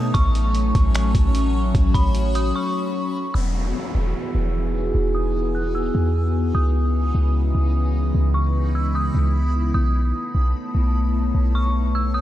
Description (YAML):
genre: hip hop, atmospheric cloud-rap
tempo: 150 BPM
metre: 4/4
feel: half-time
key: E major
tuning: A4 = 441 Hz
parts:
  - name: dark detuned synth bell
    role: melody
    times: 0.0-12.2 s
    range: B5 to F#6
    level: -30 LUFS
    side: equal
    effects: chorus, low-pass filter, tape echo
  - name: warbly tape-like pad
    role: sustained chords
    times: 0.0-12.2 s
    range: C#3 to G#4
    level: -25 LUFS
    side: left 1 dB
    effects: chorus, built-in reverb, phaser, sidechain pumping, low-pass filter
  - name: clean 808-style bass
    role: bass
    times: 0.0-12.2 s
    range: E1 to B2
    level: -20 LUFS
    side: equal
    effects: none
  - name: backwards swelling texture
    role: texture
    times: 0.0-12.2 s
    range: D#4 to B5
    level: -35 LUFS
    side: left 2 dB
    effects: built-in reverb
  - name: trip hop sampler-style drum kit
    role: drums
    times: 0.1-2.4 s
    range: finger snaps, hi-hat, kick drum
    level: -21 LUFS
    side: equal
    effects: none
  - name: downlifter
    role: sound effects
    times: 3.3-6.5 s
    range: none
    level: -33 LUFS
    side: left 3 dB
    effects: none
room: digital ambience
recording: dark, warm production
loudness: -18 LUFS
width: side -13 dB against mid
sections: 0.0-3.3 A section; 3.3-12.2 B section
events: break 2.5-3.3; filter sweep 3.3-12.2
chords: 0.1 A69; 3.3 Emaj9; 6.5 C#m9; 9.7 B9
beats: | 0.15 0.55 0.95 1.35 | 1.75 2.15 2.55 2.95 | 3.35 3.75 4.15 4.55 | 4.95 5.35 5.75 6.15 | 6.55 6.95 7.35 7.75 | 8.15 8.55 8.95 9.35 | 9.75 10.15 10.55 10.95 | 11.35 11.75 12.15